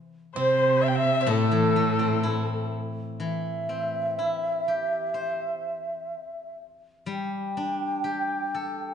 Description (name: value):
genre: chinese traditional, Chinese chamber ensemble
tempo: 62 BPM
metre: 2/4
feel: rubato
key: A yu mode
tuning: A4 = 441 Hz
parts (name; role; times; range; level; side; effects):
- steel-string zither; accompaniment; 0.0-8.9 s; A2 to C5; -30 LUFS; left 4 dB; none
- mellow xiao; melody; 0.4-8.9 s; A4 to G5; -27 LUFS; equal; none
- clear cello; second line; 0.4-2.7 s; A2 to C3; -27 LUFS; right 6 dB; none
- pipa; second line; 0.4-2.7 s; A3 to C4; -37 LUFS; right 4 dB; none
- rich erhu; second line; 0.4-2.7 s; A4 to G5; -30 LUFS; left 8 dB; none
room: wet recital hall reverb, RT60 1.5 s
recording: nothing above 10.5 kHz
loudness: -24 LUFS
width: side -8 dB against mid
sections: 0.0-3.2 A section; 3.2-8.9 B section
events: none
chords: none